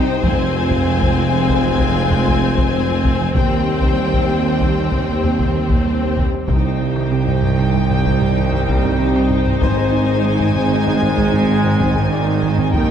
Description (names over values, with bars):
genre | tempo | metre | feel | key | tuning
cinematic, hybrid orchestral and electronic film score | 96 BPM | 5/4 | straight | C minor | A4 = 440 Hz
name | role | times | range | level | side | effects
warm symphonic violin section | melody | 0.0-12.9 s | G5 to Ab5 | -25 LUFS | left 4 dB | none
rich symphonic violin section | second line | 0.0-12.9 s | Bb4 to C5 | -28 LUFS | left 4 dB | none
rich symphonic viola section | accompaniment | 0.0-12.9 s | C4 to Eb4 | -26 LUFS | left 1 dB | none
airy breathy pad | sustained chords | 0.0-12.9 s | G3 to G5 | -26 LUFS | equal | none
mellow French horn section | sustained chords | 0.0-12.9 s | Bb3 to G4 | -26 LUFS | left 5 dB | none
warm trombone section | sustained chords | 0.0-12.9 s | C3 to Ab3 | -26 LUFS | right 3 dB | none
soft round pluck | arpeggios | 0.0-12.8 s | C3 to Ab4 | -29 LUFS | right 4 dB | none
mellow tuba | bass | 0.0-12.9 s | F1 to Eb2 | -22 LUFS | right 3 dB | none
rich symphonic double bass section | bass | 0.0-12.9 s | F1 to Eb2 | -22 LUFS | right 2 dB | none
warm symphonic cello section | bass | 0.0-12.9 s | C2 to C3 | -23 LUFS | right 3 dB | none
clear concert grand piano | texture | 0.0-12.9 s | Bb3 to D5 | -31 LUFS | left 6 dB | none
taiko ensemble | drums | 0.2-12.9 s | none | -22 LUFS | left 1 dB | none
room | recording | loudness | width
moderate scoring stage reverb, RT60 1.9 s | dark, warm production | -14 LUFS | side -8 dB against mid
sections
0.0-6.5 A section; 6.5-12.9 B section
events
none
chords
0.2 Fm; 3.4 Cm/Eb; 6.5 Cm; 9.6 Ab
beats
| 0.24 0.86 1.49 2.11 2.74 | 3.36 3.99 4.61 5.24 5.86 | 6.49 7.11 7.74 8.36 8.99 | 9.61 10.24 10.86 11.49 12.11 | 12.74